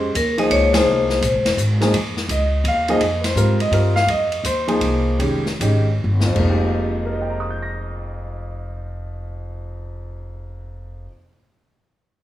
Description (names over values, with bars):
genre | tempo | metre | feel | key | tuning
modal jazz | 117-168 BPM | 3/4 | swing 65% on 8ths | F minor | A4 = 440 Hz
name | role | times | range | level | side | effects
warm grand piano | accompaniment | 0.0-11.3 s | F2 to Bb6 | -21 LUFS | equal | none
upright bass | bass | 0.0-11.1 s | F1 to Ab2 | -22 LUFS | equal | none
vibraphone with medium hard mallets | melody | 0.2-1.5 s | Bb4 to Eb5 | -19 LUFS | left 3 dB | none
open jazz drum kit | drums | 0.2-6.4 s | crash cymbal, hi-hat, kick drum, ride cymbal, snare drum | -26 LUFS | left 1 dB | none
room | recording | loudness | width
moderate large studio reverb, RT60 1.1 s | small room ambience | -16 LUFS | side -13 dB against mid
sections
0.0-1.9 A section; 1.9-6.5 B section; 6.5-9.6 C section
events
band accent 0.7; slowing down 4.1-6.5; drum fill 6.0-6.5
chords
0.0 Fm11